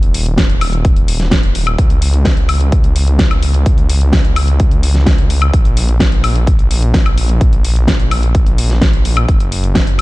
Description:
EDM, festival progressive house; 128 BPM; 4/4; straight; Bb minor; A4 = 440 Hz
detuned saw bass; bass; 0.0-10.0 s; Eb1 to Db2; -14 LUFS; equal; tube saturation, sidechain pumping
big-room dance drum kit; drums; 0.0-10.0 s; hi-hat, snare drum, woodblock; -18 LUFS; left 1 dB
electronic kick drum; drums; 0.4-9.8 s; -12 LUFS; equal
little or no reverb; dark, warm production; -10 LUFS; side -19 dB against mid
0.0-10.0 A section

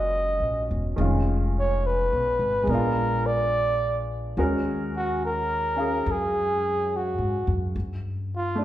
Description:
jazz ballad; 71 BPM; 4/4; swing 66% on 8ths; A4 = 438 Hz
warm flugelhorn; melody; 0.0-8.6 s; F4 to D#5; -25 LUFS; right 1 dB
clear concert grand piano; accompaniment; 0.0-8.6 s; D#3 to E#5; -30 LUFS; equal
upright bass; bass; 0.0-8.6 s; E1 to G#2; -28 LUFS; equal
wet recital hall reverb, RT60 1.4 s; recorded in a church or concert hall; -23 LUFS; side -13 dB against mid
0.0-8.6 A section
0.0 Bmaj9; 1.0 Fm7b5; 2.7 A#7b9; 4.4 D#m11; 7.7 G7(no3)

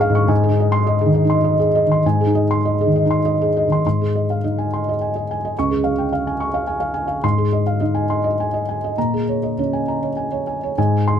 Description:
neoclassical minimalist piano; 98-108 BPM; 3/4; rubato; Ab major; A4 = 441 Hz
felt-muted upright piano; solo; 0.0-11.2 s; Db2 to Db6; -16 LUFS; equal
light reverb; dark, warm production; -16 LUFS; side -8 dB against mid
0.0-3.8 A section; 3.8-10.8 B section
0.3 Ab; 5.5 Db; 7.2 Ab; 9.0 Bbm7

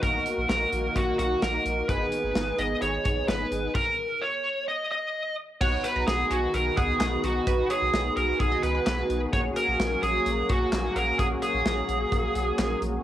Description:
synth-pop; 129 BPM; 4/4; straight; F# major; A4 = 439 Hz
smooth overdriven lead guitar; melody; 0.0-12.8 s; F#4 to D#5; -26 LUFS; equal; cassette tape, plate reverb
mellow synth brass; accompaniment; 0.0-13.0 s; A#3 to G#4; -32 LUFS; right 1 dB; chorus, phaser, cassette tape, plate reverb
lush unison pad; sustained chords; 0.0-13.0 s; D#3 to G#4; -35 LUFS; equal; chorus, phaser, cassette tape, plate reverb
round analog bass; bass; 0.0-13.0 s; G#1 to C#2; -32 LUFS; equal
modern studio drum kit; drums; 0.0-12.9 s; crash cymbal, handclaps, hi-hat, kick drum, snare drum; -30 LUFS; equal; cassette tape
analog pluck; second line; 5.6-8.9 s; B4 to A#5; -34 LUFS; right 7 dB; chorus, cassette tape, analog delay, plate reverb
wet small room reverb, RT60 0.5 s; home recording on cassette; -24 LUFS; side -12 dB against mid
0.0-5.6 A section; 5.6-13.0 B section
0.0 D#m/A#; 1.9 G#m; 3.8 N.C.; 5.6 B6; 9.3 F#add9/A#

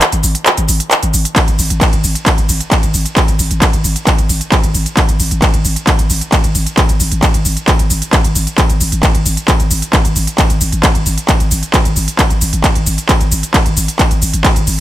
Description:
driving peak-time techno; 133 BPM; 4/4; straight; A4 = 441 Hz
techno drum kit; drums; 0.0-14.8 s; handclaps, hi-hat, ride cymbal, shaker; -14 LUFS; right 1 dB
growling 808-style bass; bass; 0.1-14.8 s; G#1; -17 LUFS; equal; overdrive, sidechain pumping, low-pass filter
electronic kick drum; drums; 1.4-14.5 s; -13 LUFS; equal
little or no reverb; -10 LUFS; side -14 dB against mid
0.0-14.8 A section
break 0.0-1.4

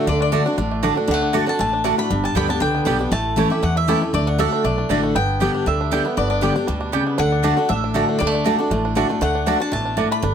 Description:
bluegrass; 236 BPM; 4/4; straight; D major; A4 = 440 Hz
bluegrass banjo; melody; 0.0-10.3 s; D3 to G4; -27 LUFS; right 5 dB; plate reverb
mandolin; melody; 0.0-10.3 s; D5 to B5; -24 LUFS; left 3 dB
picked steel-string acoustic guitar; accompaniment; 0.0-10.3 s; E2 to G4; -20 LUFS; left 1 dB
upright bass; bass; 0.1-10.3 s; G1 to E2; -25 LUFS; equal
mandolin; stabs; 0.3-10.1 s; A3 to A5; -24 LUFS; right 8 dB
moderate studio reverb, RT60 0.6 s; -17 LUFS; side -8 dB against mid
0.0-5.2 A section; 5.2-10.3 A section
0.0 D; 2.1 G; 3.1 A; 4.1 D; 5.2 G; 7.2 D

